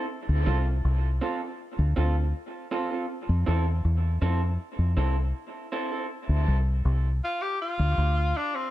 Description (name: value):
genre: dub reggae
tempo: 80 BPM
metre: 4/4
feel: straight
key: D minor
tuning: A4 = 439 Hz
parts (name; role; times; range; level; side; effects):
- electric guitar through a small old amp; accompaniment; 0.0-6.1 s; C4 to A4; -32 LUFS; right 2 dB; high-pass filter, tape echo
- deep dub fingered electric bass; bass; 0.3-8.3 s; C2 to F2; -23 LUFS; equal; none
- clear tenor saxophone; melody; 7.2-8.7 s; C4 to G4; -27 LUFS; left 1 dB; tape echo
room: light reverb, small room ambience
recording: echo-heavy mix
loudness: -24 LUFS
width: side -15 dB against mid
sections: 0.0-8.7 A section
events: none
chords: 0.1 Dm7; 3.1 Fmaj7; 6.1 Dm7